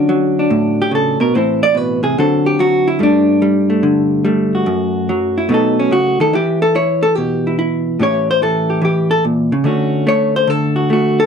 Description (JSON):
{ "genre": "solo jazz", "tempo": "145 BPM", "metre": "4/4", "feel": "swing 67% on 8ths", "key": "D major", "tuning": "A4 = 440 Hz", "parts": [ { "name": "vintage hollow-body jazz guitar", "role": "solo", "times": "0.0-11.3 s", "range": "F#2 to D5", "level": "-12 LUFS", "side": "equal", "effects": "none" } ], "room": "light reverb", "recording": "none", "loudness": "-12 LUFS", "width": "side -6 dB against mid", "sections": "0.0-11.3 A section", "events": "hollow-body jazz guitar solo 0.0-11.3", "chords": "0.0 Dmaj7; 1.3 Amadd9; 2.2 D7; 3.0 Gsus2; 4.7 F#m7; 5.5 B7; 6.3 Em; 8.0 A7b9; 9.6 Dmaj7" }